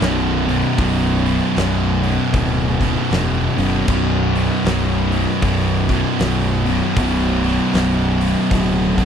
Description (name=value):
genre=stoner and doom metal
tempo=78 BPM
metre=4/4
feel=swing 61% on 8ths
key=unclear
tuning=A4 = 445 Hz
part: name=heavy high-gain guitar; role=riff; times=0.0-9.1 s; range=B1 to B2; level=-23 LUFS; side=equal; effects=distortion
part: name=thick fuzz guitar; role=riff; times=0.0-9.1 s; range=B1 to B2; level=-21 LUFS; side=left 10 dB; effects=distortion
part: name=thick fuzz guitar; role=riff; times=0.0-9.1 s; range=B1 to B2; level=-21 LUFS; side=right 11 dB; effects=distortion
part: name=fuzz picked electric bass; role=bass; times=0.0-9.1 s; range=B0 to F#1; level=-21 LUFS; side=left 1 dB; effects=overdrive
part: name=big rock drum kit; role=drums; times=0.0-9.1 s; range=crash cymbal, hi-hat, kick drum, snare drum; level=-25 LUFS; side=left 1 dB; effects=none
room=little or no reverb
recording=dry, close 1970s-style studio recording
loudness=-15 LUFS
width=side -8 dB against mid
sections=0.0-9.1 A section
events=none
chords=0.0 Bm